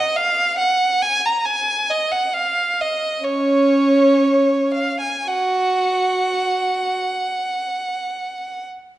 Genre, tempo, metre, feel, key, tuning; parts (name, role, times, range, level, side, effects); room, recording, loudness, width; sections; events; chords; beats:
classical, free, expressive piece for unaccompanied violin; 45-71 BPM; 4/4; rubato; A4 = 440 Hz
clear violin; solo; 0.0-8.7 s; C#4 to A#5; -17 LUFS; right 1 dB
wet recital hall reverb, RT60 1.5 s; dark, warm production, vinyl crackle; -17 LUFS; side -14 dB against mid
0.0-9.0 A section
0.60 | 1.45 2.33 3.24 4.22 | 5.27 6.42 7.57 8.65